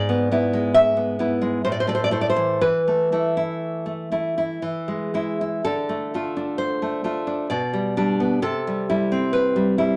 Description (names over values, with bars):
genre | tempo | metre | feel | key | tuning
romantic piece for solo classical guitar | 57-69 BPM | 3/4 | rubato | unclear | A4 = 440 Hz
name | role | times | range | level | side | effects
nylon-string guitar | solo | 0.0-10.0 s | G#2 to E5 | -22 LUFS | equal | none
room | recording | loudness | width
moderate studio reverb, RT60 0.7 s | none | -23 LUFS | mono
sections
0.0-10.0 A section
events
none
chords
0.0 E7/G#; 1.6 A5; 2.6 Esus4; 4.6 E; 5.6 Dm; 7.5 G/B; 8.4 C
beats
0.73 1.63 | 2.62 3.62 4.62 | 5.64 6.59 7.51 | 8.43 9.34